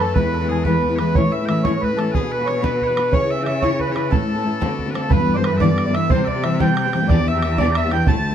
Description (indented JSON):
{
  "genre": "celtic folk, Celtic jig",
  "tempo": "121 BPM (dotted quarters)",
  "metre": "6/8",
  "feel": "straight",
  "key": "A major, G major from 5.1 s",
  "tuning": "A4 = 437 Hz",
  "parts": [
    { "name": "mellow accordion", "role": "melody", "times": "0.0-8.3 s", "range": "G#4 to A5", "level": "-23 LUFS", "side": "right 4 dB", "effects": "none" },
    { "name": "cimbalom", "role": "second line", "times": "0.0-8.3 s", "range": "G#4 to A5", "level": "-27 LUFS", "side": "left 3 dB", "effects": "none" },
    { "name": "loud bright bagpipes", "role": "second line", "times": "0.0-8.3 s", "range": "G#4 to A5", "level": "-31 LUFS", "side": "left 5 dB", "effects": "none" },
    { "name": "fingerpicked steel-string acoustic guitar", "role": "accompaniment", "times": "0.0-8.3 s", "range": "D2 to C#5", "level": "-21 LUFS", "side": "left 2 dB", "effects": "none" },
    { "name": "warm cello", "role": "bass", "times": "0.0-8.3 s", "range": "D2 to D3", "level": "-24 LUFS", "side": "equal", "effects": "none" },
    { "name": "bodhran", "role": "percussion", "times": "0.0-8.3 s", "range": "none", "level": "-22 LUFS", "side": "right 2 dB", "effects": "none" }
  ],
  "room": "light reverb",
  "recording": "close, detailed microphones",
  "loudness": "-16 LUFS",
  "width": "side -9 dB against mid",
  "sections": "0.0-5.1 A section; 5.1-8.3 B section",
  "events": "none",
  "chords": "0.2 E; 1.1 A; 2.1 Bm; 3.1 C#m; 4.1 A; 4.6 D7; 5.1 G6; 6.1 C; 7.1 Em7",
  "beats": "| 0.15 0.65 | 1.15 1.64 | 2.14 2.63 | 3.13 3.62 | 4.12 4.62 | 5.11 5.60 | 6.10 6.59 | 7.09 7.58 | 8.07"
}